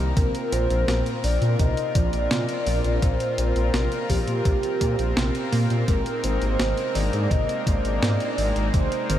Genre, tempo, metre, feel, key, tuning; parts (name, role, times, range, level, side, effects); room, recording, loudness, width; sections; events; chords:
synthwave; 84 BPM; 4/4; straight; A4 = 440 Hz
warm analog pad; sustained chords; 0.0-9.2 s; G3 to Bb4; -30 LUFS; left 2 dB; chorus, sidechain pumping
wide unison pluck; arpeggios; 0.0-9.2 s; Bb2 to Bb3; -31 LUFS; right 2 dB; tape echo
dark detuned saw bass; bass; 0.0-9.2 s; Ab1 to Bb2; -24 LUFS; equal
warm velvety synth lead; melody; 0.2-9.2 s; G4 to Eb5; -28 LUFS; right 1 dB; chorus, tremolo, diffuse ambient delay
clean 12-bit digital drum machine; drums; 0.2-9.2 s; hi-hat, snare drum; -31 LUFS; equal
electronic kick drum; drums; 0.2-8.9 s; -23 LUFS; equal
moderate huge ambient reverb, RT60 7.5 s; dreamy mix soaked in reverb; -20 LUFS; side -11 dB against mid
0.0-9.2 A section
0.2 Bbsus2; 5.9 Abadd9